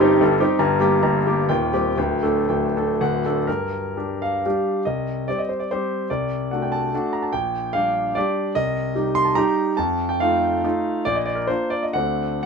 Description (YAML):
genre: classical, romantic triple-time dance for piano with dotted rhythms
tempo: 108-161 BPM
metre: 3/4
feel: rubato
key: G minor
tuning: A4 = 439 Hz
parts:
  - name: clear grand piano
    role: solo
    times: 0.0-12.5 s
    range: D1 to C6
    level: -19 LUFS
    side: equal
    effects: none
room: light reverb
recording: minimal, uncompressed stereo recording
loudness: -19 LUFS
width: side -5 dB against mid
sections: 0.0-3.5 A section; 3.5-12.5 B section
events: none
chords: 0.0 Cm/G; 0.6 Gm; 1.5 Cm/Eb; 2.0 Dsus4; 3.0 D; 3.5 Gm; 4.9 Cm; 6.1 D7/C; 7.3 Gm/Bb; 8.5 Cm; 9.8 F7; 11.1 Bb; 12.0 D7